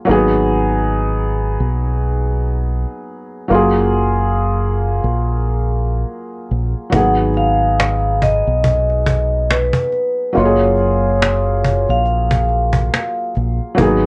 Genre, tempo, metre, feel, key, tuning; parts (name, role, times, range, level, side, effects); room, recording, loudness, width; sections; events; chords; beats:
lo-fi hip hop; 70 BPM; 4/4; swing 57% on 16ths; A4 = 441 Hz
felt-muted upright piano; accompaniment; 0.0-14.1 s; F#3 to G#4; -21 LUFS; equal; low-pass filter
deep dub fingered electric bass; bass; 0.1-14.1 s; F#1 to B1; -20 LUFS; equal
vibraphone with soft mallets; melody; 6.9-13.3 s; B4 to F#5; -20 LUFS; equal; low-pass filter, analog delay
cajon; drums; 6.9-14.0 s; -21 LUFS; equal
light reverb; cassette tape; -17 LUFS; mono
0.0-14.1 A section
0.1 G#m7; 3.5 F#maj9; 6.9 G#m7; 10.4 F#maj9
| 0.07 0.92 1.78 2.64 | 3.50 4.35 5.21 6.07 | 6.92 7.78 8.64 9.50 | 10.35 11.21 12.07 12.92 | 13.78